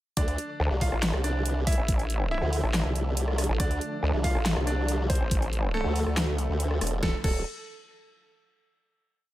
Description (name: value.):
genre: heavy wobble dubstep.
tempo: 140 BPM.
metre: 4/4.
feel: half-time.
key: D minor.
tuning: A4 = 440 Hz.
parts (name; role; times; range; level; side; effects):
bright grand piano; melody; 0.2-7.4 s; A3 to F5; -34 LUFS; equal; digital delay.
supersaw chords; sustained chords; 0.2-7.2 s; D3 to A4; -37 LUFS; right 1 dB; phaser, sidechain pumping, low-pass filter.
formant-sweep wobble bass; bass; 0.2-7.4 s; D1 to D2; -27 LUFS; equal; chorus, overdrive.
dubstep drum kit; drums; 0.2-7.3 s; crash cymbal, handclaps, hi-hat, rim click, snare drum; -32 LUFS; equal; overdrive.
electronic kick drum; drums; 0.2-7.3 s; none; -27 LUFS; equal; overdrive.
vowel-sweep wobble bass; bass; 0.6-5.8 s; A1 to D2; -27 LUFS; equal; chorus, overdrive.
room: little or no reverb.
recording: none.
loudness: -24 LUFS.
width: side -15 dB against mid.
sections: 0.2-7.0 drop; 7.0-8.7 final chord.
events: drop 0.2-7.0.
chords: 0.2 Dmadd9.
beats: | 0.17 0.60 1.03 1.46 | 1.88 2.31 2.74 3.17 | 3.60 4.03 4.46 4.88 | 5.31 5.74 6.17 6.60 | 7.03.